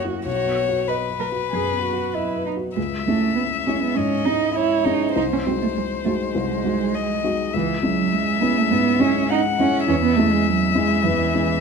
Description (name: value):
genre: quick classical-period movement for piano trio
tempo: 101 BPM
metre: 4/4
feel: rubato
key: C# minor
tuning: A4 = 440 Hz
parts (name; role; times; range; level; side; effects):
- warm violin; melody; 0.0-11.6 s; B4 to F#5; -24 LUFS; left 10 dB; none
- dark cello; second line; 0.0-11.6 s; E3 to B4; -22 LUFS; right 8 dB; none
- dark baby grand piano; accompaniment; 0.0-11.6 s; B1 to D#5; -24 LUFS; left 2 dB; none
room: moderate recital hall reverb, RT60 1.6 s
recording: close, detailed microphones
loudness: -18 LUFS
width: side -5 dB against mid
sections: 0.0-2.8 A section; 2.8-11.6 B section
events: none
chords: 0.3 B; 2.8 C#m; 5.2 G#7/B#; 7.5 C#m; 9.9 C#m/E